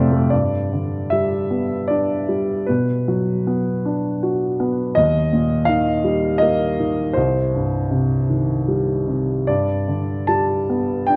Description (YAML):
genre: classical, lyrical solo piano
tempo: 74-85 BPM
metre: 3/4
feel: rubato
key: G major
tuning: A4 = 440 Hz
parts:
  - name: warm grand piano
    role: solo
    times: 0.0-11.2 s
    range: C2 to A5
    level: -20 LUFS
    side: equal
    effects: none
room: moderate recital hall reverb, RT60 1.6 s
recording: dark, warm production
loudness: -20 LUFS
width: mono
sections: 0.3-11.2 A section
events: grand piano fill 0.0-0.3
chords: 0.3 G; 2.7 Bm; 5.0 Eb; 7.2 Cm; 9.5 G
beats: | 0.33 1.12 1.90 | 2.69 3.47 4.23 | 4.97 5.69 6.42 | 7.17 7.92 8.69 | 9.49 10.30 11.10